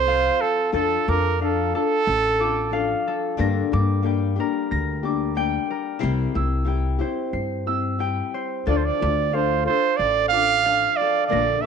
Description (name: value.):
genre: mexican folk, mariachi.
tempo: 91 BPM.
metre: 4/4.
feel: straight.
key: unclear.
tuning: A4 = 439 Hz.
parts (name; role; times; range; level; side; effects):
clear trumpet; melody; 0.0-3.0, 8.7-11.7 s; A4 to F5; -20 LUFS; right 8 dB; none.
nylon-string guitar; accompaniment; 0.0-11.7 s; G2 to Bb4; -26 LUFS; left 12 dB; none.
concert harp; arpeggios; 0.0-11.7 s; A4 to C7; -28 LUFS; left 1 dB; none.
upright bass; bass; 0.0-11.5 s; A1 to G2; -25 LUFS; left 1 dB; none.
room: moderate echo chamber reverb, RT60 2.1 s.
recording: 1960s-style stereo with parts hard left and right.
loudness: -20 LUFS.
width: side -6 dB against mid.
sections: 0.0-11.7 A section.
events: none.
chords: 0.0 F; 0.7 Dm/F; 3.4 Gm; 6.0 C; 8.7 Dm.